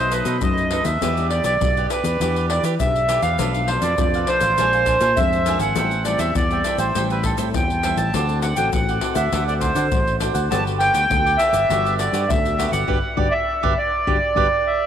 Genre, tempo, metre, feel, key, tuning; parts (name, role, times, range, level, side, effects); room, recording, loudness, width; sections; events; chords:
samba and choro; 101 BPM; 4/4; straight; G major; A4 = 442 Hz
accordion; melody; 0.0-14.9 s; A4 to A5; -20 LUFS; right 1 dB; tape echo
cavaquinho; accompaniment; 0.0-14.5 s; D4 to Ab5; -27 LUFS; right 10 dB
nylon-string guitar; accompaniment; 0.0-14.5 s; F#2 to A4; -29 LUFS; left 9 dB
fingered electric bass with an envelope filter; bass; 0.0-14.5 s; G1 to E3; -24 LUFS; equal
egg shaker, pandeiro and surdo; percussion; 0.1-14.5 s; -25 LUFS; left 3 dB
moderate plate reverb, RT60 3.0 s; 1960s-style stereo with parts hard left and right; -17 LUFS; side -9 dB against mid
0.0-14.9 A section
band accent 12.9-14.9
0.0 B7; 1.0 Em7; 3.4 Bm7b5; 4.6 Bb9; 5.8 Am7; 8.1 D7; 10.5 Gmaj9